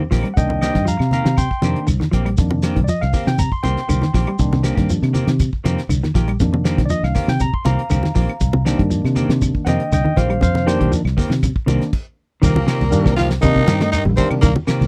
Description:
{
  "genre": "afrobeat",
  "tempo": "120 BPM",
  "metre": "4/4",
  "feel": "straight",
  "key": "C minor",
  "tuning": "A4 = 438 Hz",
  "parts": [
    { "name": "clean electric guitar", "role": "arpeggios", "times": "0.0-14.8 s", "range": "C3 to A3", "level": "-25 LUFS", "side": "equal", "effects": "none" },
    { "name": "clean electric guitar", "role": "stabs", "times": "0.0-14.8 s", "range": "Eb3 to G4", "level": "-28 LUFS", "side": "equal", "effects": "none" },
    { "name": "congas", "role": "percussion", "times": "0.0-14.9 s", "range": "none", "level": "-27 LUFS", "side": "equal", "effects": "none" },
    { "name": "fingered electric bass", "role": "bass", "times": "0.1-14.9 s", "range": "Bb1 to C3", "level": "-22 LUFS", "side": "equal", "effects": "none" },
    { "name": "damped 70s drum kit", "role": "drums", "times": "0.1-14.9 s", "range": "crash cymbal, hi-hat, kick drum, ride cymbal, snare drum", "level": "-22 LUFS", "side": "equal", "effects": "none" },
    { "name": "shekere", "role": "percussion", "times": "0.1-14.8 s", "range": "none", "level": "-28 LUFS", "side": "equal", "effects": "none" },
    { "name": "claves", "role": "percussion", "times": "0.2-14.8 s", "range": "none", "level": "-37 LUFS", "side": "equal", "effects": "none" },
    { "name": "barky tine electric piano", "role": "accompaniment", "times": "0.3-14.5 s", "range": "Eb3 to C6", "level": "-25 LUFS", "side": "equal", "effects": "overdrive" },
    { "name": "raspy tenor saxophone", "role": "melody", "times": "12.4-14.9 s", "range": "Bb3 to F4", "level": "-24 LUFS", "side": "equal", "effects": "none" },
    { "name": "growling trumpet", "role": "second line", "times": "12.4-14.9 s", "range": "Bb4 to F5", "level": "-34 LUFS", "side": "equal", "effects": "none" },
    { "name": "mellow trombone section", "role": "second line", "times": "12.4-14.9 s", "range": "Bb2 to F3", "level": "-31 LUFS", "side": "equal", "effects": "none" }
  ],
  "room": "little or no reverb",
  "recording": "dry, close 1970s-style studio recording",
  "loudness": "-18 LUFS",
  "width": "mono",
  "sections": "0.0-12.4 A section; 12.4-14.9 B section",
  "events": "tine electric piano solo 0.0-12.4; stop 11.9-12.4",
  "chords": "0.0 Cm7"
}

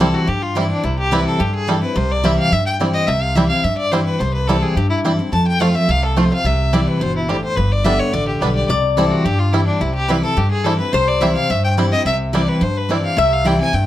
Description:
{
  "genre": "bluegrass",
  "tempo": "214 BPM",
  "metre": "4/4",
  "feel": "straight",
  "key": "C major",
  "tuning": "A4 = 440 Hz",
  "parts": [
    { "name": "bluegrass banjo", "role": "melody", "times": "0.0-13.5 s", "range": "G3 to F4", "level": "-23 LUFS", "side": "right 3 dB", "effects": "plate reverb" },
    { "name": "clear fiddle", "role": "melody", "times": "0.0-13.9 s", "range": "D4 to A5", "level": "-20 LUFS", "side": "left 1 dB", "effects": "plate reverb" },
    { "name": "picked steel-string acoustic guitar", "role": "accompaniment", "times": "0.0-13.9 s", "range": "F2 to G4", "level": "-19 LUFS", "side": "equal", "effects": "none" },
    { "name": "upright bass", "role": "bass", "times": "0.0-13.9 s", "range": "G1 to G2", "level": "-21 LUFS", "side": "equal", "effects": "none" },
    { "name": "lap resonator guitar", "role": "second line", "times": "8.7-13.9 s", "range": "C5 to E5", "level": "-20 LUFS", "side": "left 4 dB", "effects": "none" }
  ],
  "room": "moderate studio reverb, RT60 0.5 s",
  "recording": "dark, warm production",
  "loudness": "-15 LUFS",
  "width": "side -13 dB against mid",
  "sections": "0.0-13.9 A section",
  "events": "none",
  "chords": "0.0 C; 5.3 F; 6.4 C; 7.6 G; 8.7 C"
}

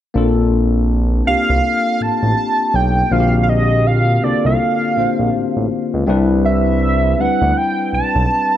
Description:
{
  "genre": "R&B, neo-soul",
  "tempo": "81 BPM",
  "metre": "4/4",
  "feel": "swing 61% on 16ths",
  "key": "Bb major",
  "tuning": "A4 = 440 Hz",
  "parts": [
    { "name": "tine electric piano", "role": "accompaniment", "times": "0.1-8.6 s", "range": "D3 to C5", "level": "-18 LUFS", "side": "left 3 dB", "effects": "wide subtle chorus" },
    { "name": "smooth synth bass", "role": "bass", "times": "0.2-8.3 s", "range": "A1 to D2", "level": "-17 LUFS", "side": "right 1 dB", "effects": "none" },
    { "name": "hollow square lead", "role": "melody", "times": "1.3-8.6 s", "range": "D5 to A5", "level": "-17 LUFS", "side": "right 2 dB", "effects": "chorus" }
  ],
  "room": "light reverb",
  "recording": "none",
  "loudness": "-13 LUFS",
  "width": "side -11 dB against mid",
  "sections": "0.1-8.6 A section",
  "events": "none",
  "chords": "0.1 Bbmaj9; 6.1 Cmaj9"
}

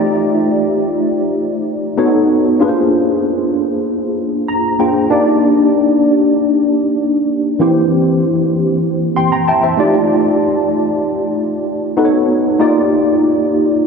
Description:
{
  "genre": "pop",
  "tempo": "96 BPM",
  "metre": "4/4",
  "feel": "straight",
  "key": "Eb major",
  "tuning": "A4 = 438 Hz",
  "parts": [
    { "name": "tine electric piano", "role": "solo", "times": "0.0-13.9 s", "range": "E3 to C6", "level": "-12 LUFS", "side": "equal", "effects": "overdrive, medium stereo tremolo, ensemble chorus" }
  ],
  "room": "wet huge ambient reverb, RT60 4.7 s",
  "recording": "dreamy mix soaked in reverb",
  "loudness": "-12 LUFS",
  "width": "side -5 dB against mid",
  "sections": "0.0-13.9 A section",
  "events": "tine electric piano fill 4.2-5.1, 8.9-10.1",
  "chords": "0.0 F13; 2.0 B9; 2.6 Bb9; 5.1 Ebmaj7; 7.6 C7/E; 9.8 F13; 12.0 B9; 12.6 Ebmaj9"
}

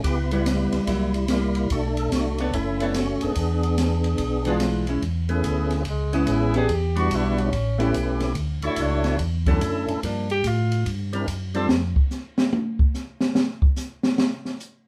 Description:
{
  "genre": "soul jazz organ trio",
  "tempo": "144 BPM",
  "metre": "4/4",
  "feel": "swing 65% on 8ths",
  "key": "A major",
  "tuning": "A4 = 445 Hz",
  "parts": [
    { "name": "percussive tonewheel organ", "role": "melody", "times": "0.0-11.7 s", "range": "G3 to C#5", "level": "-27 LUFS", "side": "equal", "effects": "slow rotary speaker, overdrive, chorus vibrato" },
    { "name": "mellow tonewheel organ", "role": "bass", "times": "0.0-11.9 s", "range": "F#1 to A2", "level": "-28 LUFS", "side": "equal", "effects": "overdrive, chorus vibrato, slow rotary speaker" },
    { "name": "open jazz drum kit", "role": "drums", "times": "0.0-14.7 s", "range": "hi-hat, kick drum, ride cymbal, snare drum, toms", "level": "-27 LUFS", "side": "equal", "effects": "none" },
    { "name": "archtop guitar, miked and amplified", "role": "accompaniment", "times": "0.3-11.7 s", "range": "D3 to C#5", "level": "-29 LUFS", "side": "equal", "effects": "none" },
    { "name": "warm tenor saxophone", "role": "melody", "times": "5.9-10.9 s", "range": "G#3 to G#4", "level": "-30 LUFS", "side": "equal", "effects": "none" }
  ],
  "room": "wet studio ambience, RT60 0.5 s",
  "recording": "heard from further back in the room",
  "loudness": "-23 LUFS",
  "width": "mono",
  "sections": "0.0-5.0 A section; 5.0-14.9 B section",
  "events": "tenor saxophone solo 5.0-14.9; drum solo 11.7-14.9",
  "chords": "0.0 C#m7b5; 0.9 C7#11; 1.7 Bm9; 3.4 E7b9; 5.0 Amaj7; 6.7 Em7; 7.5 A7; 8.4 Dmaj7; 10.0 Gm7; 10.9 C7; 11.7 N.C."
}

